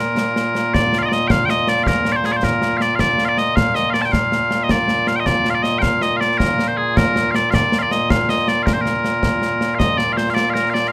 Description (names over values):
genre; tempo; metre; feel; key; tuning
scottish traditional, Scottish pipe music; 106 BPM (dotted quarters); 6/8; straight; Bb major; A4 = 440 Hz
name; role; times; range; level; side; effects
loud bright bagpipes; melody; 0.0-10.9 s; Bb2 to A5; -19 LUFS; equal; none
concert snare drum and concert bass drum; drums; 0.2-10.9 s; none; -23 LUFS; equal; none
room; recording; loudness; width
moderate studio reverb, RT60 0.5 s; rough home demo mix; -18 LUFS; mono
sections
0.7-9.8 A section; 9.8-10.9 B section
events
none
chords
none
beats
0.17 | 0.74 1.31 | 1.87 2.44 | 3.00 3.57 | 4.14 4.70 | 5.27 5.83 | 6.40 6.97 | 7.53 8.10 | 8.66 9.23 | 9.80 10.36